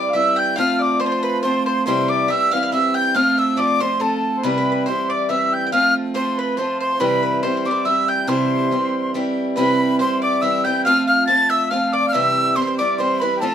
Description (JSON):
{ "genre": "celtic folk, Celtic waltz", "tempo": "140 BPM", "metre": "3/4", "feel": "swing 53% on 8ths", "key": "C major", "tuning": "A4 = 441 Hz", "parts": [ { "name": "mellow mid whistle", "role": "melody", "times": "0.0-13.5 s", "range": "A5 to A6", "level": "-20 LUFS", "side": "equal", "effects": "none" }, { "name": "bowl-back mandolin", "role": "second line", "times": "0.0-13.5 s", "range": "A4 to A5", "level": "-26 LUFS", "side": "right 1 dB", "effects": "none" }, { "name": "mellow accordion", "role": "second line", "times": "0.0-13.5 s", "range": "G4 to A5", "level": "-25 LUFS", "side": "left 1 dB", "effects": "none" }, { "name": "picked acoustic archtop guitar", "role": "accompaniment", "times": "0.0-13.5 s", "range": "C3 to F4", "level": "-21 LUFS", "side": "right 1 dB", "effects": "none" } ], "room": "moderate small room reverb, RT60 0.5 s", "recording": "minimal, uncompressed stereo recording", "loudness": "-16 LUFS", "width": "side -9 dB against mid", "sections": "0.0-9.6 A section; 9.6-13.5 A section", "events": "none", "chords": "0.0 C; 0.6 F; 1.9 C; 3.1 F; 4.4 C; 5.7 F; 7.0 C; 10.8 F; 12.1 C", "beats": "0.14 | 0.57 1.00 1.43 | 1.86 2.29 2.72 | 3.15 3.58 4.01 | 4.43 4.86 5.29 | 5.72 6.15 6.58 | 7.00 7.43 7.86 | 8.29 8.71 9.14 | 9.57 10.00 10.42 | 10.85 11.28 11.71 | 12.13 12.56 12.99 | 13.41" }